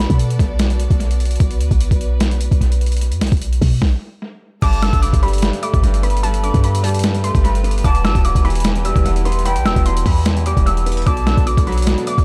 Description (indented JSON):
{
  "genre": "hip hop, trap",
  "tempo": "149 BPM",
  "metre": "4/4",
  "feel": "half-time",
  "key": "unclear",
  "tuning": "A4 = 435 Hz",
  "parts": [
    { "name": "breathy mellow silver concert flute", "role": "second line", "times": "0.0-0.2, 4.6-11.4 s", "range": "G5 to B5", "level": "-32 LUFS", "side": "equal", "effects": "analog delay" },
    { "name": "rich symphonic string section", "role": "sustained chords", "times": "0.0-12.2 s", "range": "E3 to D5", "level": "-32 LUFS", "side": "equal", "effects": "none" },
    { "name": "clean 808-style bass", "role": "bass", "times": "0.0-12.2 s", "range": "D1 to B2", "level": "-19 LUFS", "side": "equal", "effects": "none" },
    { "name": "boom bap sampler-style drum kit", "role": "drums", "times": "0.1-12.2 s", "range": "crash cymbal, hi-hat, kick drum, snare drum", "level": "-20 LUFS", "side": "equal", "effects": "overdrive, analog delay" },
    { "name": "warbly dusty pluck", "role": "melody", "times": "4.6-12.2 s", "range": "A5 to E6", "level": "-26 LUFS", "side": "equal", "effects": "chorus, low-pass filter, analog delay" },
    { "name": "clear concert grand piano", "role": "accompaniment", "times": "4.6-12.2 s", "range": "E2 to B3", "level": "-27 LUFS", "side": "equal", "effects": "low-pass filter, analog delay" }
  ],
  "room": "studio reverb",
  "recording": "echo-heavy mix",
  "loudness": "-16 LUFS",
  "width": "mono",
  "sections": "0.0-4.6 A section; 4.6-12.2 B section",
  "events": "stop 3.8-4.6",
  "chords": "0.0 Bm7; 4.6 Gadd9; 7.8 Em; 11.1 Bm7",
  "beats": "0.19 0.60 1.00 | 1.40 1.80 2.21 2.61 | 3.01 3.42 3.82 4.22 | 4.62 5.03 5.43 5.83 | 6.23 6.64 7.04 7.44 | 7.84 8.25 8.65 9.05 | 9.46 9.86 10.26 10.66 | 11.07 11.47 11.87"
}